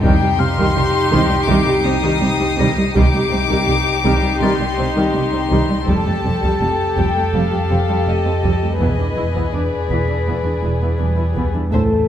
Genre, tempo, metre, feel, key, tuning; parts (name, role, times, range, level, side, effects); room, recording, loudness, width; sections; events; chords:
cinematic, suspense film score; 82 BPM; 4/4; straight; C dorian; A4 = 440 Hz
warm chamber violin section; melody; 0.0-11.8 s; D5 to Eb6; -24 LUFS; left 5 dB
warm chamber violin section; second line; 0.0-11.8 s; Eb4 to C5; -21 LUFS; left 2 dB
dark chamber viola section; accompaniment; 0.0-11.8 s; Eb3 to A4; -22 LUFS; right 1 dB
warm chamber cello section; riff; 0.0-11.9 s; E2 to C4; -25 LUFS; right 1 dB
dark chamber cello section; bass; 0.0-12.1 s; C2 to A3; -25 LUFS; right 2 dB
warm chamber double bass section; bass; 0.0-12.1 s; E1 to C2; -25 LUFS; right 3 dB
deep rumbling drone; drone; 0.0-12.1 s; A1 to F2; -23 LUFS; equal; built-in reverb
taiko ensemble; drums; 0.0-12.1 s; -24 LUFS; equal
celesta; texture; 0.0-11.8 s; F5 to B6; -32 LUFS; left 4 dB
warm chamber violin section; texture; 0.0-5.5 s; C7 to Db7; -32 LUFS; left 1 dB
mellow French horn section; sustained chords; 11.7-12.1 s; A4; -18 LUFS; left 4 dB
wet concert hall reverb, RT60 1.8 s; -15 LUFS; side -10 dB against mid
0.0-11.7 A section
0.0 Cm; 5.9 Fadd9; 8.8 E7